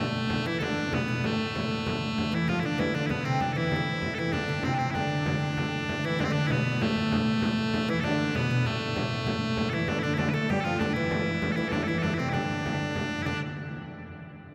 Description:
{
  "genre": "medieval dance",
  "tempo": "130 BPM (dotted quarters)",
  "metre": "6/8",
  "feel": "straight",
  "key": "unclear",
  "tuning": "A4 = 441 Hz",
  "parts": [
    { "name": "loud bright bagpipes", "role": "melody", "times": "0.0-13.4 s", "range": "A3 to B4", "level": "-33 LUFS", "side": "equal", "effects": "none" },
    { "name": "oud", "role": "second line", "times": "0.0-13.4 s", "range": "A2 to A3", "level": "-36 LUFS", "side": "equal", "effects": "none" },
    { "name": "warm viola da gamba", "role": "second line", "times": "0.0-13.3 s", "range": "A2 to A3", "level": "-35 LUFS", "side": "equal", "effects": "none" },
    { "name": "warm hurdy-gurdy", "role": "drone", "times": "0.0-13.3 s", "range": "D3 to A3", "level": "-39 LUFS", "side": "equal", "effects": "none" },
    { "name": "frame drum", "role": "percussion", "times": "0.1-13.4 s", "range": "none", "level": "-36 LUFS", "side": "equal", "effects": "none" }
  ],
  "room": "wet cathedral reverb, RT60 6.4 s",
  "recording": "recorded in a church or concert hall",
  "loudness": "-28 LUFS",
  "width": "mono",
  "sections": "0.0-5.9 A section; 5.9-13.3 A section",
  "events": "none",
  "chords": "none",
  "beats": "| 0.30 0.77 | 1.24 1.70 | 2.17 2.63 | 3.10 3.56 | 4.03 4.49 | 4.96 5.42 | 5.89 6.35 | 6.81 7.28 | 7.74 8.20 | 8.66 9.12 | 9.58 10.04 | 10.50 10.96 | 11.42 11.88 | 12.34 12.80 | 13.26"
}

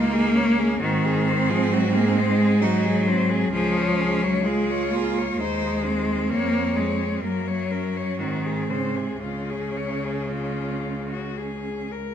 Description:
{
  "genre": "classical, lyrical piece for cello ensemble",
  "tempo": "55-68 BPM",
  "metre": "3/4",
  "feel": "rubato",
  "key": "Db major",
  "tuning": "A4 = 442 Hz",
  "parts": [
    { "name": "rich cello", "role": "melody", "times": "0.0-12.1 s", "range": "F4 to Db5", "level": "-29 LUFS", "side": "left 7 dB", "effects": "none" },
    { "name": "rich cello", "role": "second line", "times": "0.0-11.9 s", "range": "Bb3 to F4", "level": "-29 LUFS", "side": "right 9 dB", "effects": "none" },
    { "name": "clear cello", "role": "accompaniment", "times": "0.0-11.9 s", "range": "C3 to Bb3", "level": "-24 LUFS", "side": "left 2 dB", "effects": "none" },
    { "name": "rich cello", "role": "bass", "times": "0.0-12.1 s", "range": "Db2 to Ab2", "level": "-27 LUFS", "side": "right 3 dB", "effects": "none" }
  ],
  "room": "moderate recital hall reverb, RT60 1.4 s",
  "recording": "minimal, uncompressed stereo recording",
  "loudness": "-21 LUFS",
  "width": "side -9 dB against mid",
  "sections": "0.0-12.1 A section",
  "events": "none",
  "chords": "0.0 Db5; 0.8 Ab7; 3.5 Db; 5.4 Ab/Eb; 6.3 Db/F; 7.2 Gb; 8.2 Ab7; 9.2 Db",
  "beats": "| 0.81 1.71 2.62 | 3.53 4.45 5.39 | 6.31 7.23 8.20 | 9.22 10.30 11.36"
}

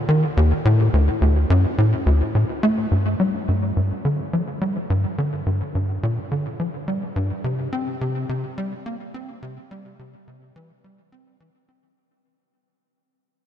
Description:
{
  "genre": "ambient",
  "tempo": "106 BPM",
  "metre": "4/4",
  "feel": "straight",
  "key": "G dorian",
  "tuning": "A4 = 440 Hz",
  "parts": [
    { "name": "tight sequencer bass", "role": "solo", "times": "0.1-11.9 s", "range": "D2 to C4", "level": "-19 LUFS", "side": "equal", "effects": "lush chorus, tape echo" }
  ],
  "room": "moderate huge ambient reverb, RT60 8.2 s",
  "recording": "dreamy mix soaked in reverb",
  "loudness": "-19 LUFS",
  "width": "side -10 dB against mid",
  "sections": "0.0-2.9 A section; 2.9-12.0 B section",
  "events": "fade-out 2.9-12.0",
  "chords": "none",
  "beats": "0.08 | 0.65 1.22 1.78 2.35 | 2.91 3.48 4.05 4.61 | 5.18 5.74 6.31 6.88 | 7.44 8.01 8.57 9.14 | 9.71 10.27 10.84 11.40"
}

